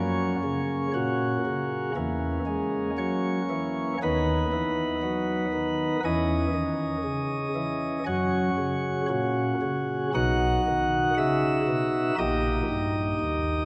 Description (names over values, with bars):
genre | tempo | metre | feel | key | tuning
classical, chorale-style piece for pipe organ | 59 BPM | 4/4 | straight | B major | A4 = 440 Hz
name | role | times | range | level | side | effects
chamber organ, sparkling flutes | solo | 0.0-13.7 s | A#1 to F#5 | -27 LUFS | equal | none
room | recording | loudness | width
wet church reverb, RT60 3.7 s | none | -27 LUFS | mono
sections
0.0-13.7 A section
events
none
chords
0.0 F#; 2.0 F#7/E; 4.0 B/D#; 6.0 C#m/E; 8.1 F#; 10.1 B; 12.2 D#/A#